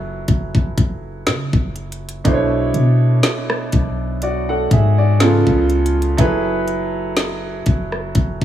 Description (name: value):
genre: contemporary R&B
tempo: 61 BPM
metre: 4/4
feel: swing 54% on 16ths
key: F# minor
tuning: A4 = 439 Hz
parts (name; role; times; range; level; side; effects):
- bright baby grand piano; accompaniment; 0.0-8.4 s; B2 to F#5; -20 LUFS; right 2 dB; none
- soft 808-style bass; bass; 0.0-8.4 s; F#1 to C#3; -19 LUFS; left 1 dB; none
- trap drum kit; drums; 0.3-8.4 s; hi-hat, kick drum, rim click, snare drum; -18 LUFS; left 1 dB; none
room: light reverb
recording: small room ambience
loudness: -15 LUFS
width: side -11 dB against mid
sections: 0.0-8.4 A section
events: none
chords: 0.0 F#m11; 2.2 Bm11; 5.2 C#7b13; 6.2 F#m11